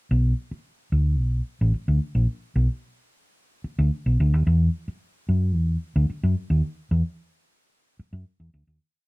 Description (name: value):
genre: funk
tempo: 110 BPM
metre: 4/4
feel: straight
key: unclear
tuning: A4 = 440 Hz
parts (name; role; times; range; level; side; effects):
- hollow-body short-scale fingered electric bass; solo; 0.1-8.8 s; A1 to F#2; -20 LUFS; equal; none
room: moderate studio reverb, RT60 0.6 s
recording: dry, close 1970s-style studio recording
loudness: -21 LUFS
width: side -25 dB against mid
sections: 0.1-8.8 breakdown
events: fade-out 6.6-8.8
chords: none